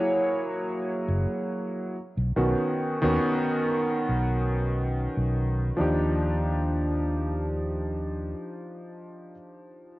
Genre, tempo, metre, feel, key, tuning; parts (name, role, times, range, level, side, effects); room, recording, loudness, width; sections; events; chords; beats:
vaporwave; 70 BPM; 4/4; swing 55% on 16ths; A4 = 440 Hz
warm electric grand piano; accompaniment; 0.0-10.0 s; D#3 to Db5; -27 LUFS; equal; lush chorus, cassette tape, tape echo
fingered electric bass; bass; 1.1-8.3 s; Gb1 to D#2; -27 LUFS; equal; low-pass filter
moderate small room reverb, RT60 0.5 s; home recording on cassette; -24 LUFS; side -18 dB against mid
0.0-5.8 A section; 5.8-9.2 B section
filter sweep on fingered electric bass 0.0-5.8
0.0 Gb9; 1.9 Badd9; 5.8 Ebmaj9
0.66 1.51 | 2.37 3.23 4.08 4.94 | 5.80 6.66 7.51 8.37